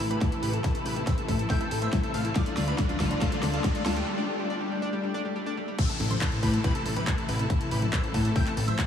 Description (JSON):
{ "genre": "uplifting trance", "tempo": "140 BPM", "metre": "4/4", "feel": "straight", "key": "A minor", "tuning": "A4 = 440 Hz", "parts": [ { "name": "dense compressed supersaw", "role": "melody", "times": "0.0-8.9 s", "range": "D4 to G5", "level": "-35 LUFS", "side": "equal", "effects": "sidechain pumping, low-pass filter, diffuse ambient delay" }, { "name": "plucky unison lead", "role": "second line", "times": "0.0-8.9 s", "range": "D5 to G6", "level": "-38 LUFS", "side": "equal", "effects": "sidechain pumping, diffuse ambient delay" }, { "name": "rich studio string section", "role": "sustained chords", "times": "0.0-8.9 s", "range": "C3 to F4", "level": "-35 LUFS", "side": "left 2 dB", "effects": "sidechain pumping" }, { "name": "analog pluck", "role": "arpeggios", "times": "0.0-5.8 s", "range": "G3 to F4", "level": "-34 LUFS", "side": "left 1 dB", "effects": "chorus, sidechain pumping, diffuse ambient delay" }, { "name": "plucky analog bass", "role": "bass", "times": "0.0-8.7 s", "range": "D1 to A2", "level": "-29 LUFS", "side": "left 1 dB", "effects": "sidechain pumping" }, { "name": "big-room dance drum kit", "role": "drums", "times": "0.0-8.9 s", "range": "congas, crash cymbal, handclaps, hi-hat, snare drum", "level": "-33 LUFS", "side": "left 1 dB", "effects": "overdrive" }, { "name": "riser, swell and downlifter", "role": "sound effects", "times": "1.4-8.9 s", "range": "none", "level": "-39 LUFS", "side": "left 2 dB", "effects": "none" }, { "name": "electronic kick drum", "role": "drums", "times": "0.2-8.9 s", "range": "none", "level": "-28 LUFS", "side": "left 1 dB", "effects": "overdrive" } ], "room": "wet huge ambient reverb, RT60 4.4 s", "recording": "dreamy mix soaked in reverb", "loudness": "-25 LUFS", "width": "side -8 dB against mid", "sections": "0.0-5.8 A section; 5.8-8.9 B section", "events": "build-up 0.0-5.8; drum fill 0.0-4.1; filter sweep on synth pluck 0.0-5.8; filter sweep on digital synth lead 0.0-5.8; break 4.1-5.8; swell 5.1-5.8; drop 5.8-8.9", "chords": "0.0 Am; 2.4 Dm; 4.1 G5; 5.8 Am" }